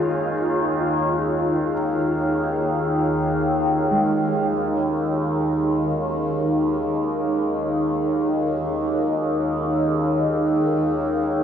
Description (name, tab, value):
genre	dark ambient drone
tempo	free time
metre	none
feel	none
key	Eb minor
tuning	A4 = 440 Hz
part	mellow horn-like synth lead	melody	0.0-11.4 s	F4 to Bb4	-32 LUFS	left 1 dB	none
part	dark analog pad	sustained chords	0.0-11.4 s	Eb4 to F5	-22 LUFS	equal	chorus
part	warm concert grand piano	arpeggios	0.0-11.4 s	Gb2 to Ab3	-32 LUFS	right 4 dB	wide subtle chorus, analog delay
part	overtone-sweeping drone	drone	0.0-11.4 s	Eb2 to Eb3	-24 LUFS	left 1 dB	chorus, built-in reverb, phaser
part	quartz singing bowl	texture	4.5-11.4 s	none	barely audible	none	none
room	wet lush hall reverb, RT60 2.6 s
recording	dreamy mix soaked in reverb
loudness	-19 LUFS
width	side -8 dB against mid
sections	0.0-4.5 A section; 4.5-11.4 B section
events	none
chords	0.0 Ebmadd9